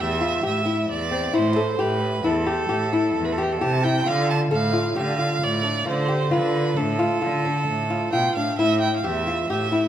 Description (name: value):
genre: contemporary instrumental, contemporary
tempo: 133 BPM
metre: 5/4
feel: straight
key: A minor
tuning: A4 = 437 Hz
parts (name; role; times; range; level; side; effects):
- clear violin; melody; 0.0-9.9 s; G4 to A5; -25 LUFS; right 4 dB; none
- flamenco guitar; arpeggios; 0.0-9.9 s; C4 to A4; -24 LUFS; left 2 dB; none
- clear cello; bass; 0.0-9.9 s; E2 to D3; -25 LUFS; equal; none
room: wet recital hall reverb, RT60 1.7 s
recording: none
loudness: -20 LUFS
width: side -10 dB against mid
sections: 0.0-9.9 A section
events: none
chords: 0.0 Am7; 4.1 Dm; 8.6 A7(no3)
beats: 0.44 0.90 1.35 | 1.80 2.25 2.71 3.16 3.61 | 4.06 4.51 4.97 5.42 5.87 | 6.33 6.78 7.23 7.68 8.13 | 8.59 9.04 9.49